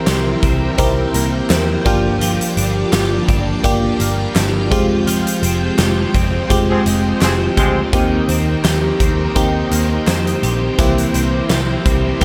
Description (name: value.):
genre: 1980s-style pop.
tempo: 84 BPM.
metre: 4/4.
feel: swing 55% on 16ths.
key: F dorian.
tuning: A4 = 439 Hz.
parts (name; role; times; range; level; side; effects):
FM electric piano; accompaniment; 0.0-12.2 s; Ab3 to Bb4; -22 LUFS; equal; chorus, phaser.
high-gain distorted guitar; accompaniment; 0.0-12.2 s; C3 to G4; -31 LUFS; equal; distortion, subtle chorus.
string machine, violins; sustained chords; 0.0-12.2 s; Ab3 to G5; -27 LUFS; equal; ensemble chorus.
twelve-string electric guitar; riff; 0.0-12.2 s; Eb3 to G4; -25 LUFS; equal; ensemble chorus, delay.
vintage muted picked electric bass; bass; 0.1-12.2 s; F1 to F2; -22 LUFS; equal; none.
huge arena drum kit; drums; 0.1-12.2 s; hi-hat, kick drum, snare drum, tambourine; -21 LUFS; equal; none.
group handclap; percussion; 0.1-11.7 s; none; -33 LUFS; equal; none.
warm horn section; stabs; 6.7-7.8 s; F3 to Ab4; -25 LUFS; equal; delay.
room: light reverb, small room ambience.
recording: none.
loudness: -16 LUFS.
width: mono.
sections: 0.0-12.2 A section.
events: band accent 5.1-7.9.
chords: 0.0 C7; 1.9 Gm7; 4.7 Fmadd9; 7.9 Eb6; 10.8 C7.